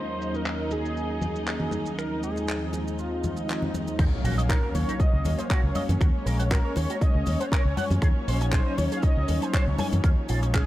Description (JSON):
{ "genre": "nu-disco, nu disco", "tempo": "119 BPM", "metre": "4/4", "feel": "swing 54% on 16ths", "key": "unclear", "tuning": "A4 = 444 Hz", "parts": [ { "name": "wide unison lead", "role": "melody", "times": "0.0-10.7 s", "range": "F4 to F5", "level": "-34 LUFS", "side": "equal", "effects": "cassette tape, digital delay" }, { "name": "warm analog pad", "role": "accompaniment", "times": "0.0-10.7 s", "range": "Eb2 to F5", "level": "-32 LUFS", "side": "equal", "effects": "chorus, sidechain pumping" }, { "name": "dark studio string section", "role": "sustained chords", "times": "0.0-10.7 s", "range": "Db4 to Eb5", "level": "-35 LUFS", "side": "left 1 dB", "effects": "sidechain pumping" }, { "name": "damped 70s drum kit", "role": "drums", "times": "0.2-10.7 s", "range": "crash cymbal, finger snaps, handclaps, hi-hat, shaker", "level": "-35 LUFS", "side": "left 1 dB", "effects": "none" }, { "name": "congas", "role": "percussion", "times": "0.3-10.5 s", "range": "none", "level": "-33 LUFS", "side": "left 2 dB", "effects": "none" }, { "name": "swell and impact", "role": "sound effects", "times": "3.2-6.0 s", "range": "none", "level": "-35 LUFS", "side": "equal", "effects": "none" }, { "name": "electric guitar with an envelope filter", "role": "riff", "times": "4.0-10.6 s", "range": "Db4 to Ab5", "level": "-36 LUFS", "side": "right 4 dB", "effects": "analog chorus" }, { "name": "fingered electric bass with an envelope filter", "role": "bass", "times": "4.0-10.6 s", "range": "Bb1 to Gb2", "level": "-26 LUFS", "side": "equal", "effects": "sidechain pumping" }, { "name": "electronic kick drum", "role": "drums", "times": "4.0-10.7 s", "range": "none", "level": "-22 LUFS", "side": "equal", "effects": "none" } ], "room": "small room ambience", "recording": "low-pass filter", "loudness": "-23 LUFS", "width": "side -15 dB against mid", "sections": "0.0-4.0 A section; 4.0-10.7 B section", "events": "swell 3.2-4.0; drop 4.0-10.7; impact 4.0-6.0", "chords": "0.0 Ab7sus4/Eb; 2.0 Ab69/Eb; 4.0 Ebm7; 6.0 Gbadd9; 8.0 Ab7sus4; 10.0 Db", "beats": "0.46 0.96 1.47 | 1.97 2.48 2.98 3.49 | 3.99 4.49 5.00 5.50 | 6.01 6.51 7.01 7.52 | 8.02 8.53 9.03 9.54 | 10.04 10.54" }